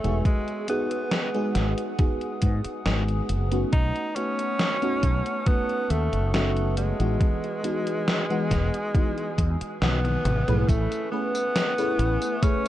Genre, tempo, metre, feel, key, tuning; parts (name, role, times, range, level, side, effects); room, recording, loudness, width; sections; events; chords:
vaporwave; 69 BPM; 4/4; straight; A4 = 440 Hz
warm tenor saxophone; melody; 0.0-12.7 s; G#3 to D#4; -29 LUFS; equal; tape echo
FM electric piano with soft pad layer; accompaniment; 0.0-12.7 s; E3 to B4; -29 LUFS; equal; phaser, analog chorus, tape echo
warbly tape-like pad; sustained chords; 0.0-12.7 s; A3 to E6; -38 LUFS; right 2 dB; chorus, built-in reverb
mellow fretless electric bass; bass; 0.0-12.2 s; E1 to G#2; -25 LUFS; equal; analog chorus
gated 80s digital drum machine; drums; 0.0-12.7 s; hi-hat, snare drum, tambourine, toms; -28 LUFS; equal; gated reverb, gated reverb snare, small room ambience
electronic kick drum; drums; 0.3-12.6 s; -23 LUFS; equal; overdrive, small room ambience
little or no reverb; dark, warm production, cassette tape; -22 LUFS; side -13 dB against mid
0.0-10.7 A section; 10.7-12.7 B section
drum fill 9.8-10.7; band accent 9.8-10.2
0.2 G#m7; 3.7 B7; 7.2 Emaj7